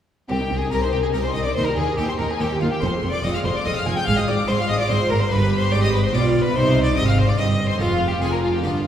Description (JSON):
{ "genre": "classical, baroque-style concerto movement with solo episodes", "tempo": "144 BPM", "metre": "3/4", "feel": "straight", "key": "C minor", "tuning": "A4 = 440 Hz", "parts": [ { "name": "clear violin", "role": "melody", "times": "0.3-8.9 s", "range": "F4 to Ab5", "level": "-26 LUFS", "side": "left 1 dB", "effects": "none" }, { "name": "rich chamber violin section", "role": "melody", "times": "0.3-8.7 s", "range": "F5 to Ab6", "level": "-28 LUFS", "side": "left 4 dB", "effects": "none" }, { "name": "rich chamber violin section", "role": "second line", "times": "0.3-8.9 s", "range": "F4 to Ab5", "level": "-28 LUFS", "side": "left 2 dB", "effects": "none" }, { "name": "harpsichord", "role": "accompaniment", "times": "0.3-8.9 s", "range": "C2 to G4", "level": "-28 LUFS", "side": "left 1 dB", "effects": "none" }, { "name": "rich symphonic viola section", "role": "accompaniment", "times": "0.3-8.9 s", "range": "C4 to Ab4", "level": "-27 LUFS", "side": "right 1 dB", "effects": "none" }, { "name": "clear chamber double bass section", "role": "bass", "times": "0.3-8.9 s", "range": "F1 to Eb2", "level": "-24 LUFS", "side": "right 1 dB", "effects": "none" }, { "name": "warm symphonic cello section", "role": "bass", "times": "0.3-8.9 s", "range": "C2 to C3", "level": "-24 LUFS", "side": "right 2 dB", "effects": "none" } ], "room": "wet scoring stage reverb, RT60 1.7 s", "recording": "heard from further back in the room", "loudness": "-18 LUFS", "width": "side -9 dB against mid", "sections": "0.3-8.9 A section", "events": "none", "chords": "0.3 Cm; 1.6 Cm/Eb; 2.8 Fm; 4.1 Fm/Ab; 5.3 G7; 6.6 Cm; 7.8 Fm; 8.2 Ddim/F", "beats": "| 0.29 0.72 1.14 | 1.56 1.98 2.40 | 2.81 3.23 3.65 | 4.07 4.48 4.90 | 5.31 5.73 6.14 | 6.56 6.97 7.38 | 7.80 8.22 8.64" }